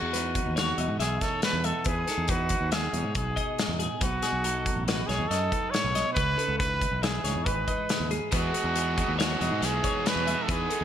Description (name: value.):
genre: math rock and midwest emo.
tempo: 139 BPM.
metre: 5/4.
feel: straight.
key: E major.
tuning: A4 = 445 Hz.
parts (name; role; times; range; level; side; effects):
breathy trumpet; melody; 0.0-10.8 s; F#4 to C#5; -30 LUFS; equal; none.
twelve-string electric guitar; accompaniment; 0.0-10.8 s; E2 to F#4; -37 LUFS; right 6 dB; lush chorus.
twelve-string electric guitar; arpeggios; 0.0-10.8 s; G#4 to E5; -34 LUFS; left 3 dB; wide subtle chorus.
growling fingered electric bass; bass; 0.0-10.8 s; G#1 to G#2; -31 LUFS; equal; overdrive.
loose indie drum kit; drums; 0.1-10.8 s; hi-hat, kick drum, snare drum; -30 LUFS; left 1 dB; gated reverb.
overdriven electric guitar; riff; 8.3-10.8 s; E3 to G#4; -32 LUFS; right 1 dB; lush chorus.
room: light reverb, studio reverb.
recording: bright 1980s-style digital production.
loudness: -25 LUFS.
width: side -10 dB against mid.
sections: 0.0-10.8 A section.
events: none.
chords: 0.0 Emaj9; 4.0 B7; 6.2 C#m9; 8.3 Emaj9.